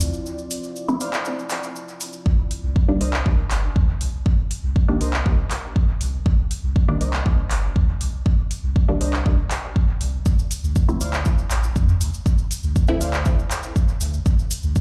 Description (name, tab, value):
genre	dub techno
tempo	120 BPM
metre	4/4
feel	straight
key	unclear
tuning	A4 = 440 Hz
part	deep dark ambient pad	sustained chords	0.0-2.2 s	C4 to D5	-37 LUFS	equal	chorus, built-in reverb, sidechain pumping
part	pure sine sub bass	bass	0.0-14.8 s	G1 to F2	-25 LUFS	equal	sidechain pumping
part	deep house drum kit	drums	0.0-14.6 s	handclaps, hi-hat	-31 LUFS	equal	overdrive, dub echo
part	cabasa	percussion	0.0-2.2, 10.3-14.8 s	none	-37 LUFS	equal	none
part	filtered dub chord stab	stabs	0.9-13.0 s	Eb3 to E4	-30 LUFS	equal	phaser, sidechain pumping, dub echo
part	warbly lo-fi synth keys	riff	1.0-13.1 s	D4 to F5	-36 LUFS	equal	chorus, sidechain pumping, dub echo
part	electronic kick drum	drums	2.3-14.8 s	none	-22 LUFS	equal	none
room	light reverb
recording	played on a big sound system in a bare room, large studio reverb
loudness	-21 LUFS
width	mono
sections	0.0-2.3 A section; 2.3-14.8 A section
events	filter sweep on synth stab 0.0-2.3, 2.3-14.8; break 0.3-2.3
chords	0.0 Dm9; 2.3 Cm9; 10.3 Dm9